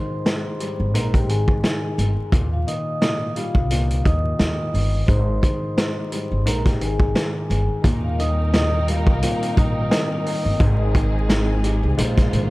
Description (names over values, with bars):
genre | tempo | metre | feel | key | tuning
hip hop, boom-bap hip-hop | 87 BPM | 4/4 | swing 56% on 16ths | Eb major | A4 = 440 Hz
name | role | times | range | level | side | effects
vibraphone with soft mallets | melody | 0.0-10.6 s | F4 to Eb6 | -28 LUFS | left 1 dB | high-pass filter, low-pass filter, dub echo
dark concert grand piano | accompaniment | 0.0-12.5 s | Ab2 to G4 | -27 LUFS | left 1 dB | high-pass filter, low-pass filter, dub echo
vintage drum kit | drums | 0.3-12.5 s | hi-hat, kick drum, snare drum | -21 LUFS | equal | none
upright bass | bass | 0.8-12.5 s | G1 to Eb2 | -21 LUFS | equal | none
hollow soft pad | sustained chords | 7.8-12.5 s | Eb3 to G5 | -34 LUFS | equal | none
warm symphonic string section | stabs | 7.8-12.5 s | Eb3 to C5 | -29 LUFS | right 1 dB | high-pass filter, low-pass filter, dub echo
room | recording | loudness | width
studio ambience | echo-heavy mix, vinyl crackle | -18 LUFS | side -20 dB against mid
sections
0.0-7.8 A section; 7.8-12.5 B section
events
none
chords
0.0 Abmaj7; 0.9 Bb7sus4; 2.3 Eb6; 5.1 Abmaj7; 6.5 Bb7sus4; 7.8 Eb6; 10.6 Abmaj7; 12.0 Bb7sus4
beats
0.26 0.95 1.64 | 2.33 3.02 3.71 4.39 | 5.08 5.77 6.46 7.15 | 7.84 8.53 9.22 9.91 | 10.60 11.29 11.98